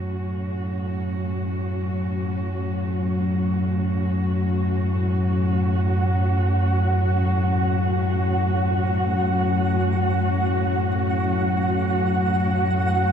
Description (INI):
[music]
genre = dark ambient drone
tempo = free time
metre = none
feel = none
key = F# minor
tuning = A4 = 440 Hz
[part]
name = muted studio cello section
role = sustained chords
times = 0.0-13.1 s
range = A2 to F#4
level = -26 LUFS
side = equal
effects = shimmer reverb
[part]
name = deep rumbling drone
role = drone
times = 0.0-13.1 s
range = F#2 to F#3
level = -22 LUFS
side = left 1 dB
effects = built-in reverb
[part]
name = flickering grainy texture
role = texture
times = 5.6-13.1 s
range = F#5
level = -27 LUFS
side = right 2 dB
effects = built-in reverb, shimmer reverb
[sound]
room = wet huge ambient reverb, RT60 8.5 s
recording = dark, warm production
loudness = -20 LUFS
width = side -8 dB against mid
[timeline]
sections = 0.0-13.1 A section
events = filter sweep on synth drone 0.0-13.1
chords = 0.0 F#m